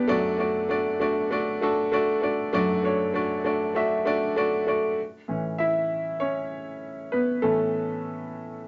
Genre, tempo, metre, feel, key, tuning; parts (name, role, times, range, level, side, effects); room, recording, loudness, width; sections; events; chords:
pop; 98 BPM; 4/4; straight; A4 = 438 Hz
clear baby grand piano; solo; 0.0-8.7 s; F#2 to E5; -26 LUFS; equal
wet small room reverb, RT60 0.5 s; nothing above 7.7 kHz; -26 LUFS; mono
0.0-5.0 A section; 5.0-8.7 B section
grand piano solo 5.0-8.7
0.1 D/F#; 5.0 A